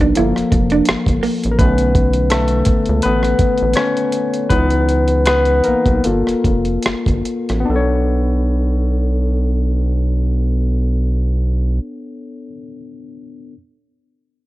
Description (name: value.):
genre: R&B, neo-soul.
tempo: 71-84 BPM.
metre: 4/4.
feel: swing 54% on 16ths.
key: unclear.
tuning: A4 = 444 Hz.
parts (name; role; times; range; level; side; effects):
vintage hollow-body jazz guitar; second line; 0.0-1.4 s; Bb3 to E4; -18 LUFS; right 5 dB; none.
barky tine electric piano; accompaniment; 0.0-13.5 s; D3 to C#5; -18 LUFS; left 2 dB; overdrive, wide subtle chorus.
rubbery square bass; bass; 0.0-11.8 s; F1 to C#2; -17 LUFS; equal; none.
dusty soul sampler-style drum kit; drums; 0.2-7.7 s; hi-hat, kick drum, rim click; -18 LUFS; equal; overdrive.
room: little or no reverb.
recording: worn, warbling old tape, cassette tape, warbly pitch drift.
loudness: -14 LUFS.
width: side -17 dB against mid.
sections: 0.0-7.7 A section; 7.7-11.0 B section.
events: tine electric piano solo 0.0-7.7; slowing down 1.6-7.7.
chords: 0.2 Gm9; 1.6 Bm9; 4.5 C#m9; 6.0 Gm9; 7.7 Bm9.